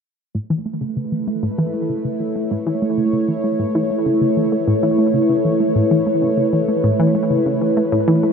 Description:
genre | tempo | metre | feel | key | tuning
ambient, sequencer-driven space music | 97 BPM | 4/4 | straight | unclear | A4 = 440 Hz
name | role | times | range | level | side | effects
sweeping resonant pad | sustained chords | 0.3-8.3 s | A3 to C#5 | -17 LUFS | equal | chorus
analog pluck | riff | 0.3-8.3 s | A2 to A3 | -20 LUFS | left 1 dB | chorus, analog delay
room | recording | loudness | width
wet huge ambient reverb, RT60 7.8 s | none | -16 LUFS | side -6 dB against mid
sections
0.3-8.3 A section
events
filter sweep on synth arpeggio sound 0.3-8.3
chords
0.3 Aadd9

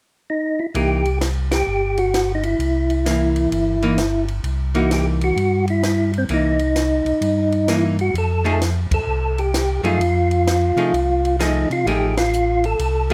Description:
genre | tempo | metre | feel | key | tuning
soul jazz organ trio | 130 BPM | 4/4 | swing 65% on 8ths | C mixolydian | A4 = 441 Hz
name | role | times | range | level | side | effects
percussive tonewheel organ | melody | 0.3-13.1 s | C4 to A4 | -22 LUFS | equal | overdrive, fast rotary speaker, plate reverb
archtop guitar, miked and amplified | accompaniment | 0.7-13.1 s | E3 to G#4 | -24 LUFS | equal | none
mellow tonewheel organ | bass | 0.7-13.1 s | G1 to C3 | -24 LUFS | equal | chorus vibrato, slow rotary speaker
compact cocktail drum kit | drums | 0.7-13.1 s | hi-hat, kick drum, ride cymbal, snare drum | -31 LUFS | equal | none
room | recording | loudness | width
light reverb | none | -19 LUFS | mono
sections
0.7-13.1 A section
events
band accent 1.4, 8.8, 12.1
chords
0.0 N.C.; 0.7 C7#9; 8.1 F7#9

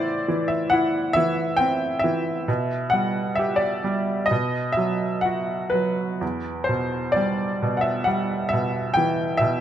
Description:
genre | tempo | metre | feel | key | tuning
classical, lyrical solo piano | 62-69 BPM | 4/4 | rubato | E minor | A4 = 440 Hz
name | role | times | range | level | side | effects
bright baby grand piano | solo | 0.0-9.6 s | E2 to G5 | -21 LUFS | equal | none
room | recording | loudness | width
light reverb | close, detailed microphones | -21 LUFS | side -10 dB against mid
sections
0.0-9.6 A section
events
none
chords
0.0 Am; 2.5 Em9/B; 4.3 B5; 6.2 Em

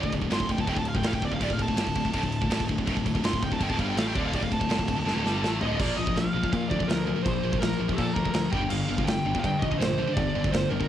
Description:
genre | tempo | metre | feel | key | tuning
heavy metal | 165 BPM | 4/4 | straight | D minor | A4 = 440 Hz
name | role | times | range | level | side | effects
high-gain lead guitar | melody | 0.0-10.9 s | G4 to C6 | -31 LUFS | right 1 dB | distortion, cassette tape, analog delay
heavy high-gain guitar | riff | 0.0-10.9 s | D2 to Bb3 | -33 LUFS | right 10 dB | distortion
high-gain distorted guitar | riff | 0.0-10.9 s | D2 to Bb3 | -30 LUFS | left 7 dB | distortion
fuzz picked electric bass | bass | 0.0-10.8 s | D1 to Bb2 | -31 LUFS | right 1 dB | overdrive
big rock drum kit | drums | 0.0-10.9 s | china cymbal, crash cymbal, kick drum, snare drum, toms | -30 LUFS | right 1 dB | cassette tape
room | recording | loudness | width
studio reverb | home recording on cassette | -24 LUFS | side -11 dB against mid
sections
0.0-5.8 A section; 5.8-10.9 B section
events
lead electric guitar solo 0.0-5.8; drum fill 5.1-5.8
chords
0.0 D5; 5.8 Bb; 8.5 Gm

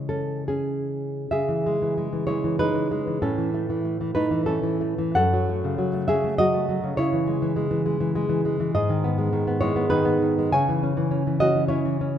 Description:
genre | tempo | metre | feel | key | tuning
romantic piece for solo classical guitar | 66-106 BPM | 3/4 | rubato | C# minor | A4 = 440 Hz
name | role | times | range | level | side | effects
nylon-string guitar | solo | 0.0-12.2 s | F#2 to G#5 | -21 LUFS | equal | none
room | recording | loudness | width
moderate concert hall reverb, RT60 2.3 s | minimal, uncompressed stereo recording | -21 LUFS | side -9 dB against mid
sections
0.0-1.3 A section; 1.3-12.2 B section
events
none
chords
0.0 C#m; 3.2 A; 5.2 F#m; 7.0 C#m; 8.7 G#m; 10.5 C#m

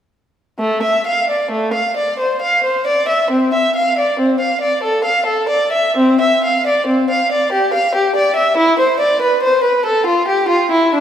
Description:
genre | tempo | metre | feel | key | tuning
classical, baroque-style suite movement for unaccompanied violin | 68 BPM | 3/4 | uneven beats, rubato | A minor | A4 = 439 Hz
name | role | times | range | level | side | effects
dark violin | solo | 0.6-11.0 s | A3 to F5 | -13 LUFS | equal | none
room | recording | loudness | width
wet recital hall reverb, RT60 1.7 s | heard from further back in the room | -13 LUFS | side -9 dB against mid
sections
0.6-11.0 A section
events
none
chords
none

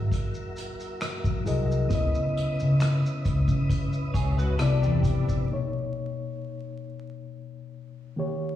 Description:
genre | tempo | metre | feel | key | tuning
R&B, neo-soul | 67 BPM | 4/4 | swing 53% on 16ths | B major | A4 = 442 Hz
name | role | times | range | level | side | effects
reed electric piano | accompaniment | 0.0-8.6 s | B2 to D#5 | -30 LUFS | left 2 dB | fast tremolo, plate reverb, slapback echo
tonewheel organ | sustained chords | 0.0-5.5 s | C3 to D#5 | -37 LUFS | right 1 dB | chorus vibrato, slow rotary speaker, plate reverb
vintage muted fingered electric bass | bass | 0.0-5.4 s | A#1 to C#3 | -25 LUFS | left 1 dB | none
unplugged drum kit | drums | 0.1-5.5 s | hi-hat, kick drum, rim click | -29 LUFS | equal | none
maracas and finger snaps | percussion | 0.1-5.5 s | none | -48 LUFS | left 2 dB | slapback echo
electric guitar through a small old amp | second line | 4.1-5.5 s | D4 to C#5 | -36 LUFS | right 2 dB | ensemble chorus, plate reverb, slapback echo
room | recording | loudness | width
light reverb | live gig heard through the venue's PA, recital hall reverb, vinyl crackle, studio ambience | -24 LUFS | side -12 dB against mid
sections
0.0-5.5 A section; 5.5-8.6 B section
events
none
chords
0.0 F#13; 1.9 C#m9; 4.6 Cmaj9; 5.5 Bmaj9

